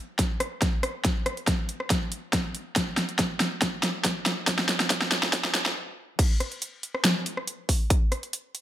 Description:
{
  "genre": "dubstep",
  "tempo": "140 BPM",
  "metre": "4/4",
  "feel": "half-time",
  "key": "none",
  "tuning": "none",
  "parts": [
    { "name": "big-room dance drum kit", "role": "drums", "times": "0.2-8.6 s", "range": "crash cymbal, hi-hat, rim click, snare drum", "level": "-25 LUFS", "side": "equal", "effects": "overdrive" },
    { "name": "electronic kick drum", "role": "drums", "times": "0.2-8.0 s", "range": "none", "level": "-26 LUFS", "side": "equal", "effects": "overdrive" }
  ],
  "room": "light reverb, digital ambience",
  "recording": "high-pass filter",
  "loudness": "-24 LUFS",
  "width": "side -12 dB against mid",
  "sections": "0.0-6.2 A section; 6.2-8.6 B section",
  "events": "build-up 0.0-6.2; drum fill 0.0-5.8; filter sweep 0.0-6.2; stop 5.8-6.2; drop 6.2-8.6",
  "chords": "none",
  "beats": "0.19 0.62 | 1.05 1.47 1.90 2.33 | 2.76 3.19 3.62 4.05 | 4.47 4.90 5.33 5.76 | 6.19 6.62 7.05 7.47 | 7.90 8.33"
}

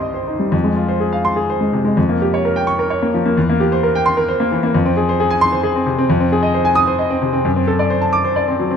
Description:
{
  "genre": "classical, virtuoso piano study",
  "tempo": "78-90 BPM (dotted quarters)",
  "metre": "6/8",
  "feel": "rubato",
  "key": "F minor",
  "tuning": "A4 = 440 Hz",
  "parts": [
    { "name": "clear grand piano", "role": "solo", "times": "0.0-8.8 s", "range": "C2 to Eb6", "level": "-14 LUFS", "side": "equal", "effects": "none" }
  ],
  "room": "light reverb",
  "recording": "none",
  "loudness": "-14 LUFS",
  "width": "side -7 dB against mid",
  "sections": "0.5-8.8 A section",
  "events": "none",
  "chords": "0.0 Cm; 0.5 Fm; 2.0 Gm7b5/F; 3.4 C7/E; 4.7 Fm; 6.1 Fm7; 7.5 D7/F#",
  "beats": "| 0.53 1.25 | 1.97 2.67 | 3.36 4.05 | 4.74 5.41 | 6.09 6.77 | 7.45 8.13"
}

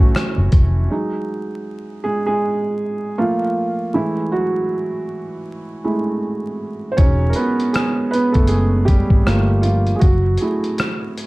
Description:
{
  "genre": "lo-fi hip hop",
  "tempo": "79 BPM",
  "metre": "4/4",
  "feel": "swing 59% on 16ths",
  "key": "unclear",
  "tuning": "A4 = 440 Hz",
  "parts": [
    { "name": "felt-muted upright piano", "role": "accompaniment", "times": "0.0-11.3 s", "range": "E3 to C#5", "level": "-19 LUFS", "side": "right 2 dB", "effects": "cassette tape, low-pass filter" },
    { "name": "string machine, violas", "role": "sustained chords", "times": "0.0-0.9 s", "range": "none", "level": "barely audible", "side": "none", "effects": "none" },
    { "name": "vintage muted fingered electric bass", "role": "bass", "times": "0.0-0.9, 7.0-10.4 s", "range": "E1 to A1", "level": "-17 LUFS", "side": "equal", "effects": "none" },
    { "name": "dusty soul sampler-style drum kit", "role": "drums", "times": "0.2-0.7, 7.0-11.3 s", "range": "hi-hat, kick drum, rim click", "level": "-16 LUFS", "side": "equal", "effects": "none" }
  ],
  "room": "moderate small room reverb, RT60 0.5 s",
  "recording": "dark, warm production, vinyl crackle",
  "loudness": "-16 LUFS",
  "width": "side -21 dB against mid",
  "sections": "0.9-11.3 A section",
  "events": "felt piano solo 0.9-11.3",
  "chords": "0.0 F#m7; 0.9 D#madd11/F#; 3.2 Fadd11; 3.9 F#m7; 7.0 Emaj7; 9.3 Gm7; 10.0 F#m7",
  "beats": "0.15 | 0.91 1.67 2.43 3.19 | 3.95 4.71 5.46 6.22 | 6.98 7.74 8.50 9.26 | 10.02 10.78"
}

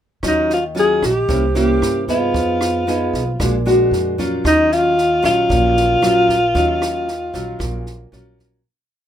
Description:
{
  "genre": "bossa nova",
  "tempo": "114 BPM",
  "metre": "4/4",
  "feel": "straight",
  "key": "Eb minor",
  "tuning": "A4 = 444 Hz",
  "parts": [
    { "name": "nylon-string guitar", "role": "accompaniment", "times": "0.2-8.6 s", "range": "Bb2 to Ab4", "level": "-20 LUFS", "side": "equal", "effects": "none" },
    { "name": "upright bass", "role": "bass", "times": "0.2-8.6 s", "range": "Bb1 to G2", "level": "-24 LUFS", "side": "equal", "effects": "none" },
    { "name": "compact cocktail drum kit", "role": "drums", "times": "0.2-8.5 s", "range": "kick drum, rim click, snare drum", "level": "-26 LUFS", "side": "right 1 dB", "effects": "none" },
    { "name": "breathy alto saxophone", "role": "melody", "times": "0.3-8.1 s", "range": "Eb4 to Ab4", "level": "-16 LUFS", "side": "left 1 dB", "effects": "none" }
  ],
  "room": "light reverb",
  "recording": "minimal, uncompressed stereo recording",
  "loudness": "-14 LUFS",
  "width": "side -10 dB against mid",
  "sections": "0.2-8.6 A section",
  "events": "fade-out 6.5-8.6",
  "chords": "0.2 Ebm9; 1.3 C7b9; 2.3 Fm7b5; 3.4 Bb7b13; 4.4 Ebm9",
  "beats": "| 0.23 0.76 1.29 1.81 | 2.34 2.87 3.40 3.92 | 4.45 4.97 5.50 6.02 | 6.55 7.07 7.59 8.12"
}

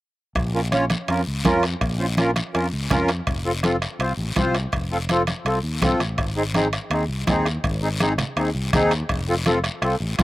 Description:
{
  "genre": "latin, cumbia",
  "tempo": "165 BPM",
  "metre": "4/4",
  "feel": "straight",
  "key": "unclear",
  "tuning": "A4 = 440 Hz",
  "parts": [
    { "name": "fretless electric bass", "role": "bass", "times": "0.4-10.2 s", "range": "F1 to F2", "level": "-26 LUFS", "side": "equal", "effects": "none" },
    { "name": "bombo", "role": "percussion", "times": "0.4-10.2 s", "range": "none", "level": "-28 LUFS", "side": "equal", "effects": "none" },
    { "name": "guiro", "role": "percussion", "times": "0.4-10.2 s", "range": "none", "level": "-32 LUFS", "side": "left 4 dB", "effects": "none" },
    { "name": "timbales", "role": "percussion", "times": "0.4-10.2 s", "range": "none", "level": "-28 LUFS", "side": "right 5 dB", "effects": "none" },
    { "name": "accordion", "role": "accompaniment", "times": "0.5-10.2 s", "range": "C4 to Db5", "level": "-22 LUFS", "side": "equal", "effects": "light tremolo tuning" },
    { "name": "congas", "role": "percussion", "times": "0.7-10.2 s", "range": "none", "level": "-25 LUFS", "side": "right 1 dB", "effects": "none" }
  ],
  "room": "little or no reverb",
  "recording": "recorded outdoors, with no room sound",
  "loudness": "-20 LUFS",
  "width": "side -17 dB against mid",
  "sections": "0.4-10.2 A section",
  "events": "none",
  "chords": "0.4 Bbm; 3.3 F; 6.2 Ab; 9.1 F",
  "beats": "| 0.36 0.72 1.09 1.45 | 1.81 2.18 2.54 2.91 | 3.27 3.63 4.00 4.36 | 4.73 5.09 5.46 5.82 | 6.18 6.55 6.91 7.28 | 7.64 8.00 8.37 8.73 | 9.10 9.46 9.82 10.19"
}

